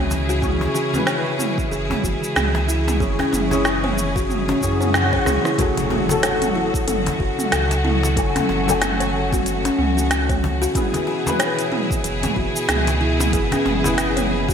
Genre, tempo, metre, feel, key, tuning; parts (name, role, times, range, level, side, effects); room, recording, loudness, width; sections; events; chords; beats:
organic downtempo; 93 BPM; 4/4; swing 58% on 16ths; F# minor; A4 = 439 Hz
felt-muted upright piano; accompaniment; 0.0-14.5 s; E3 to G#5; -26 LUFS; left 1 dB; ensemble chorus, sidechain pumping, ping-pong delay
rich studio string section; sustained chords; 0.0-14.5 s; B2 to G#4; -25 LUFS; right 1 dB; vintage 12-bit sampler grit, sidechain pumping
buzzing kalimba; arpeggios; 0.0-14.5 s; C#4 to C#5; -24 LUFS; left 2 dB; ping-pong delay
warm sub bass; bass; 0.0-14.5 s; F#1 to F#2; -24 LUFS; equal; sidechain pumping
organic electronic drum kit; drums; 0.1-14.5 s; hi-hat, rim click, shaker, snare drum, toms; -23 LUFS; right 1 dB; gated reverb
cajon; percussion; 0.1-14.5 s; -32 LUFS; left 3 dB
electronic kick drum; drums; 0.4-14.5 s; -25 LUFS; equal
swell and impact; sound effects; 4.5-8.2 s; -29 LUFS; equal
moderate plate reverb, RT60 3.2 s; bright 1980s-style digital production; -17 LUFS; side -7 dB against mid
0.0-5.6 A section; 5.6-14.5 B section
swell 4.5-5.6; band accent 4.9-5.3; drum fill 5.3-5.6; impact 5.6-8.2
0.0 C#m; 5.6 F#madd9; 10.7 E
| 0.43 1.07 1.72 2.36 | 3.01 3.65 4.30 4.94 | 5.59 6.23 6.88 7.52 | 8.17 8.81 9.46 10.10 | 10.75 11.39 12.04 12.69 | 13.33 13.97